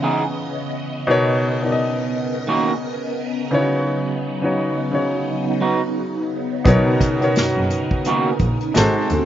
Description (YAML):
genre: R&B, neo-soul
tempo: 86 BPM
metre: 4/4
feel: swing 58% on 16ths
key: B major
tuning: A4 = 445 Hz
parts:
  - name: electric guitar through a small old amp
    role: second line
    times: 0.0-8.3 s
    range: D#3 to G#4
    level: -20 LUFS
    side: right 3 dB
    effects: slapback echo
  - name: warm grand piano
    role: accompaniment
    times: 0.0-9.3 s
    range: B2 to F#5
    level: -21 LUFS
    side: left 1 dB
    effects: none
  - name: phased string machine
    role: sustained chords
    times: 0.0-9.3 s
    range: B#2 to D#5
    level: -24 LUFS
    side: right 1 dB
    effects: ensemble chorus, phaser
  - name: warm horn section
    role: stabs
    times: 6.6-9.1 s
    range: D#3 to A4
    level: -25 LUFS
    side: right 3 dB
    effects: slapback echo
  - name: warm double bass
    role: bass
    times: 6.7-9.2 s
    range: F#1 to D2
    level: -20 LUFS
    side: equal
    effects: none
  - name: unplugged drum kit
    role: drums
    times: 6.7-9.3 s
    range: hi-hat, kick drum, snare drum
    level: -21 LUFS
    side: equal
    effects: none
room: little or no reverb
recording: recorded outdoors, with no room sound, nothing above 7.6 kHz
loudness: -17 LUFS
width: side -11 dB against mid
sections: 0.0-9.3 A section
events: none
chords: 0.0 C#m9; 1.1 Bmaj9; 3.5 C#9sus4; 6.7 Bmaj9; 8.8 G#7b9